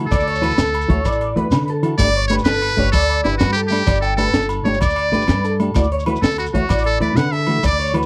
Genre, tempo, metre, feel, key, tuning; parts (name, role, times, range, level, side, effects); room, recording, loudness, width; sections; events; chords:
highlife guitar band; 128 BPM (dotted quarters); 12/8; straight; D major; A4 = 440 Hz
clean electric guitar; accompaniment; 0.0-8.1 s; E3 to G4; -23 LUFS; equal
electric guitar at the edge of break-up; arpeggios; 0.0-8.1 s; A4 to G5; -25 LUFS; equal; analog chorus, slapback echo
upright bass; bass; 0.0-8.0 s; G1 to D3; -24 LUFS; equal
trumpet with metal mute; melody; 0.1-8.0 s; E4 to F#5; -23 LUFS; equal
crunchy breakbeat drum kit; drums; 0.1-8.0 s; hi-hat, kick drum, snare drum; -23 LUFS; equal
agogo bells; percussion; 0.1-8.1 s; -32 LUFS; equal
shekere; percussion; 0.1-8.1 s; -29 LUFS; equal
small room ambience; dry, close 1970s-style studio recording; -18 LUFS; mono
0.0-8.1 A section
0.0 Dadd9; 2.0 Gsus2; 5.8 Dadd9